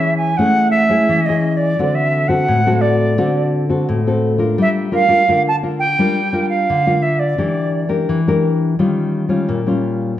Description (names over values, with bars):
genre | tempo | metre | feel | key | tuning
samba | 86 BPM | 4/4 | straight | unclear | A4 = 439 Hz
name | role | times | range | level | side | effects
silver concert flute | melody | 0.0-7.9 s | D5 to A5 | -17 LUFS | right 2 dB | none
nylon-string guitar | accompaniment | 0.0-10.2 s | A2 to Bb4 | -16 LUFS | left 2 dB | none
room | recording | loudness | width
wet large studio reverb, RT60 1.2 s | dark, warm production | -14 LUFS | side -12 dB against mid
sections
0.0-10.2 A section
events
none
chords
0.0 Amaj7; 1.8 D7; 4.6 Gm7; 7.4 Em7b5; 8.8 Eb9